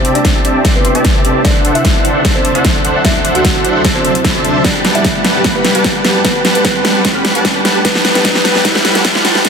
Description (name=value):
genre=future bass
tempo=150 BPM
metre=4/4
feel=half-time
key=G major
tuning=A4 = 440 Hz
part: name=kalimba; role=melody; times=0.0-9.5 s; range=A3 to F#5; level=-19 LUFS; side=equal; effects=sidechain pumping, ping-pong delay
part: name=shimmering ambient pad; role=sustained chords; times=0.0-9.5 s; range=D2 to E4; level=-24 LUFS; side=equal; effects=chorus, built-in reverb, phaser, sidechain pumping
part: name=dense compressed supersaw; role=riff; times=0.0-9.5 s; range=G3 to C6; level=-15 LUFS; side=right 1 dB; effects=sidechain pumping, low-pass filter
part: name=big-room dance drum kit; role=drums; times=0.0-9.5 s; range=hi-hat, snare drum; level=-14 LUFS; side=equal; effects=none
part: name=riser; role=sound effects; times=3.3-9.5 s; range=none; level=-23 LUFS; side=equal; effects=none
part: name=electronic kick drum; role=drums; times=0.2-9.5 s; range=none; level=-16 LUFS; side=equal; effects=none
room=moderate huge ambient reverb, RT60 4.3 s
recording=dense, heavily limited modern master, high-pass filter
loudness=-9 LUFS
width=side -6 dB against mid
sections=0.0-9.5 A section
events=build-up 0.0-9.5; drum fill 0.0-9.5; filter sweep on supersaw synth 0.0-9.5; filter sweep 0.0-9.5; riser 3.3-9.5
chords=0.0 C69; 1.4 D9; 4.6 Gmaj9